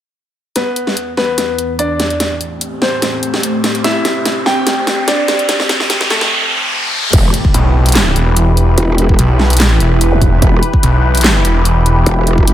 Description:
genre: heavy wobble dubstep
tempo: 146 BPM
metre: 4/4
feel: swing 53% on 16ths, half-time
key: E minor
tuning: A4 = 440 Hz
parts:
  - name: clear baby grand piano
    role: melody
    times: 0.6-6.3 s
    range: A3 to G5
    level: -18 LUFS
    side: equal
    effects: vintage 12-bit sampler grit, low-pass filter, digital delay
  - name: evolving wavetable pad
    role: sustained chords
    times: 1.3-12.5 s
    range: E2 to B4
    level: -19 LUFS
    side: left 1 dB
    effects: phaser, built-in reverb, sidechain pumping
  - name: dubstep drum kit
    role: drums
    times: 0.6-12.5 s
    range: crash cymbal, handclaps, hi-hat, snare drum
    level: -16 LUFS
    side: equal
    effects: high-pass filter on snare, high-pass filter on hats, high-pass filter on cymbals, high-pass filter on room
  - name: riser, noise sweep, impact and zap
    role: sound effects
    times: 2.9-10.2 s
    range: none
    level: -20 LUFS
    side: equal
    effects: none
  - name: growl bass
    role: bass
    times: 7.1-12.5 s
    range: E1 to G1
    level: -12 LUFS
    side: equal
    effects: chorus, overdrive
  - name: electronic kick drum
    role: drums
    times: 7.1-12.5 s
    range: none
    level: -12 LUFS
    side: equal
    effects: none
  - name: snarling distorted saw bass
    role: bass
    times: 7.5-12.0 s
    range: E1 to B1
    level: -11 LUFS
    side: equal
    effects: distortion, overdrive
room: light reverb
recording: high-pass filter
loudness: -11 LUFS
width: side -12 dB against mid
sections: 0.6-7.1 A section; 7.1-12.5 B section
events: build-up 0.6-7.1; drum fill 0.6-6.3; filter sweep on ambient pad 0.6-7.1; filter sweep on grand piano 0.6-7.1; filter sweep 0.6-7.1; riser 2.9-7.1; noise sweep 5.5-7.1; drop 7.1-12.5; impact 7.1-8.8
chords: 0.6 Em; 2.2 Am7; 3.8 Csus2; 5.5 Am7; 7.1 Em

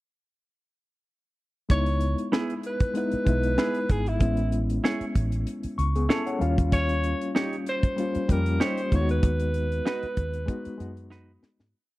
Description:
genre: lush 1970s-style soul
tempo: 96 BPM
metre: 4/4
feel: swing 54% on 16ths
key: C# minor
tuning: A4 = 441 Hz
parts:
  - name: breathy alto saxophone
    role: melody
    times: 1.7-11.4 s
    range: E4 to C#5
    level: -30 LUFS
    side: equal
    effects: slapback echo
  - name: reed electric piano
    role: accompaniment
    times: 1.7-11.8 s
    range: G3 to C#6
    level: -29 LUFS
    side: left 2 dB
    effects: overdrive, fast tremolo
  - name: vintage muted fingered electric bass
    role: bass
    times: 1.7-11.7 s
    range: G#1 to G#2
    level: -26 LUFS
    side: equal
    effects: none
  - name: tight funk drum kit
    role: drums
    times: 1.7-11.7 s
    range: hi-hat, kick drum, snare drum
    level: -24 LUFS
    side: equal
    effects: none
  - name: semi-hollow electric guitar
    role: riff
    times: 2.3-11.3 s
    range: B3 to C#5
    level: -32 LUFS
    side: right 4 dB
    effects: spring reverb
room: studio reverb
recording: dry, close 1970s-style studio recording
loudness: -23 LUFS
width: side -18 dB against mid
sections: 1.7-11.7 verse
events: reed electric piano fill 5.5-6.7; fade-out 9.2-11.7; drum fill 11.1-11.7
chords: 1.7 C#m7; 4.2 Amaj7; 6.4 D#7; 8.9 G#m7/D#

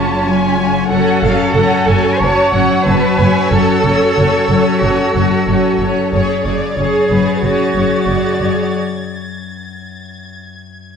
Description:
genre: cinematic, suspense film score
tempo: 92 BPM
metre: 4/4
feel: straight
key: F# minor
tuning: A4 = 445 Hz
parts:
  - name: rich studio violin section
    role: melody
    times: 0.0-8.7 s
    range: C#5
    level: -25 LUFS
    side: left 1 dB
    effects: none
  - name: warm symphonic violin section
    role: second line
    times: 0.0-8.7 s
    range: A4 to A5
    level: -20 LUFS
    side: equal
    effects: none
  - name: rich chamber viola section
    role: accompaniment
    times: 0.0-8.7 s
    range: C#3 to G#4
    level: -20 LUFS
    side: equal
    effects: none
  - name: Celtic harp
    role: riff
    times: 0.0-11.0 s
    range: F#2 to F#3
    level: -18 LUFS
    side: left 6 dB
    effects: none
  - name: rich chamber cello section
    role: bass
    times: 0.0-8.7 s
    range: C#4 to C#5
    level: -17 LUFS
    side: right 2 dB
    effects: none
  - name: warm chamber double bass section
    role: bass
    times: 0.0-8.5 s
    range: F#1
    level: -18 LUFS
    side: right 3 dB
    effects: none
  - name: warm studio violin section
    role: texture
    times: 0.0-11.0 s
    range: F#5 to A6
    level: -28 LUFS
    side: left 2 dB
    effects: none
room: wet scoring stage reverb, RT60 1.6 s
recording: dark, warm production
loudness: -11 LUFS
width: side -7 dB against mid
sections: 0.0-11.0 A section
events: break 8.7-11.0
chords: 0.0 C#/F#; 0.9 F#m; 6.1 C#5/F#

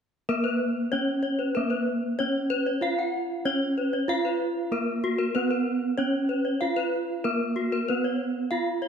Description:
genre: gamelan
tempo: 95 BPM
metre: 4/4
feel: straight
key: Bb pelog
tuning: A4 = 441 Hz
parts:
  - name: gamelan-type bronze metallophone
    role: melody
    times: 0.3-8.9 s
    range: Bb3 to F4-30c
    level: -27 LUFS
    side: right 1 dB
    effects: none
  - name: gamelan-type bronze metallophone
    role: arpeggios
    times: 0.3-8.9 s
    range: Gb4-20c to Gb5-20c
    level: -28 LUFS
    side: left 2 dB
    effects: none
room: wet scoring stage reverb, RT60 1.9 s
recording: none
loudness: -24 LUFS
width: side -7 dB against mid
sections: 0.3-8.9 A section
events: none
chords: none

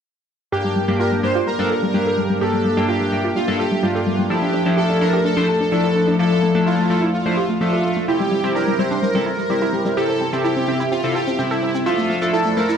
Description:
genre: progressive house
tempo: 127 BPM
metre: 4/4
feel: straight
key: unclear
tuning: A4 = 442 Hz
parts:
  - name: soft supersaw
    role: melody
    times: 0.5-12.8 s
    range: E4 to C5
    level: -22 LUFS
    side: equal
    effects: ping-pong delay
  - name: warm analog pad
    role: sustained chords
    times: 0.9-12.8 s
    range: F3 to E5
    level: -25 LUFS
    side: equal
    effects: chorus
  - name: analog pluck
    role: arpeggios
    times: 0.5-12.8 s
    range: G3 to A4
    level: -23 LUFS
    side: equal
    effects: chorus, ping-pong delay
  - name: chorused polysynth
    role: stabs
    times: 0.5-12.7 s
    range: G2 to E5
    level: -21 LUFS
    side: left 1 dB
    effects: vintage 12-bit sampler grit, ping-pong delay
  - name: shaker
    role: drums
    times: 0.5-12.8 s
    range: none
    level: -46 LUFS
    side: right 2 dB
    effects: none
room: light reverb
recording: played on a big sound system in a bare room, stone room reverb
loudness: -16 LUFS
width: side -7 dB against mid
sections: 0.5-12.8 A section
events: filter sweep on synth arpeggio sound 0.5-12.8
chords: 0.5 Gm; 4.3 Dmadd9; 8.1 C; 11.9 Dmadd9

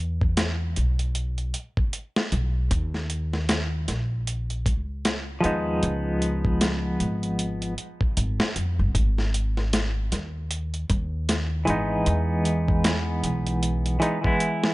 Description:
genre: trip hop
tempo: 77 BPM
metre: 4/4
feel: swing 59% on 16ths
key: unclear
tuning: A4 = 440 Hz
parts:
  - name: upright bass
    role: bass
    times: 0.0-14.0 s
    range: G#1 to E#2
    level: -26 LUFS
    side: equal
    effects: none
  - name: dusty soul sampler-style drum kit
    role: drums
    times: 0.2-14.7 s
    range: hi-hat, kick drum, snare drum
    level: -26 LUFS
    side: equal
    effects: overdrive
  - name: semi-hollow electric guitar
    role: accompaniment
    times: 5.4-14.7 s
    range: E3 to E4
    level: -24 LUFS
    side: equal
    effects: tremolo, tape echo
room: little or no reverb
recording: nothing above 10.5 kHz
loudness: -23 LUFS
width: side -20 dB against mid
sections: 0.0-14.7 A section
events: none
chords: 0.0 E5; 2.7 D#5; 5.8 C#7; 8.9 G#m; 12.1 Emaj7

